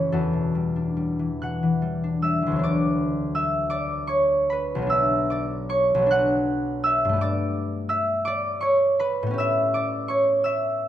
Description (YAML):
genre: classical, solo harp piece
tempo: 44-57 BPM (dotted quarters)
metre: 6/8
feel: rubato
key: D major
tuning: A4 = 440 Hz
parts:
  - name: concert harp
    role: solo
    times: 0.0-10.9 s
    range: B1 to F#6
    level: -21 LUFS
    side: equal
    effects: none
room: moderate recital hall reverb, RT60 1.4 s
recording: close, detailed microphones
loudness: -21 LUFS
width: side -11 dB against mid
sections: 0.0-2.6 A section; 2.6-10.9 B section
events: none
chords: 0.1 Em11; 2.6 D6; 4.9 Bmadd9; 7.2 Gadd9; 9.4 A9